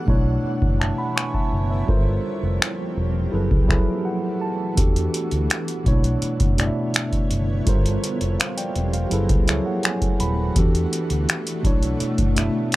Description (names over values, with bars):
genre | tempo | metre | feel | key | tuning
contemporary R&B | 83 BPM | 4/4 | straight | unclear | A4 = 441 Hz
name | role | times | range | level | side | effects
mellow tine electric piano | accompaniment | 0.0-12.8 s | B2 to C#6 | -24 LUFS | right 1 dB | medium stereo tremolo
granular cloud pad | sustained chords | 0.0-12.8 s | E3 to A3 | -30 LUFS | equal | built-in reverb
vintage muted fingered electric bass | bass | 0.1-12.5 s | D#1 to E2 | -23 LUFS | equal | none
booming analog drum machine | drums | 0.1-12.8 s | finger snaps, hi-hat, kick drum | -20 LUFS | equal | none
room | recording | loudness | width
little or no reverb | dry, gritty hardware recording | -19 LUFS | side -17 dB against mid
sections
0.0-12.8 A section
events
tine electric piano fill 3.3-4.8, 9.1-10.6; break 4.1-4.8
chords
0.1 Bm11; 1.9 Gm11; 3.3 F#m11; 4.8 Em11; 5.9 Bm11; 7.7 Gm11; 9.1 F#m11; 10.6 Em11; 11.6 Bm11